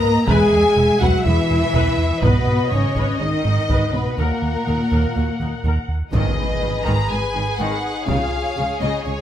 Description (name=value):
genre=cinematic, hybrid orchestral and electronic film score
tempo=123 BPM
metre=4/4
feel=straight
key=G# dorian from 6.1 s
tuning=A4 = 440 Hz
part: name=warm studio violin section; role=melody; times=0.0-9.2 s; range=A#4 to A#5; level=-27 LUFS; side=left 2 dB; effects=none
part: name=warm symphonic violin section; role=second line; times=0.0-9.2 s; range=G#4 to A#5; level=-27 LUFS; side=left 3 dB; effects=none
part: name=rich symphonic viola section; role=accompaniment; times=0.0-9.2 s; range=C#3 to F#5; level=-28 LUFS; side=left 2 dB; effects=none
part: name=mellow French horn section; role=sustained chords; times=0.0-9.2 s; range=A#3 to B4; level=-23 LUFS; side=left 2 dB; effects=none
part: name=chorused synth bass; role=riff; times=0.0-6.0 s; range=D#2 to G#2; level=-22 LUFS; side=right 1 dB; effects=none
part: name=rich symphonic cello section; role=bass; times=0.0-9.1 s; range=G#2 to A#3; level=-24 LUFS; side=right 1 dB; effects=none
part: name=clear symphonic double bass section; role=bass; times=0.3-9.1 s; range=E1 to D#2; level=-24 LUFS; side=right 2 dB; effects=none
part: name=taiko ensemble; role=drums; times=0.3-8.5 s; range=none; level=-25 LUFS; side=equal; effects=none
part: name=impact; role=sound effects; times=6.1-8.1 s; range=none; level=-26 LUFS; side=equal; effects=none
room=light reverb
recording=close, detailed microphones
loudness=-16 LUFS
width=side -10 dB against mid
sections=0.0-6.1 A section; 6.1-9.2 B section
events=impact 6.1-8.1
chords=0.3 E; 2.2 G#m; 4.2 D#m; 6.1 G#m; 8.1 C#